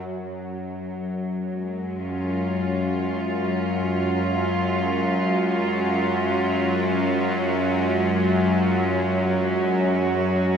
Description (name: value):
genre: dark ambient drone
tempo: free time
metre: none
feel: none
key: unclear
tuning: A4 = 440 Hz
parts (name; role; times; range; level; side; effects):
- bowed-like drone; drone; 0.0-10.6 s; F#2 to F#3; -23 LUFS; equal; built-in reverb
- warm studio cello section; sustained chords; 0.1-10.6 s; F#3 to F#4; -25 LUFS; equal; none
room: wet huge ambient reverb, RT60 7.8 s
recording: none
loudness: -21 LUFS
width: side -7 dB against mid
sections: 0.1-10.6 A section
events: filter sweep on synth drone 0.1-10.6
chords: 0.1 F#sus2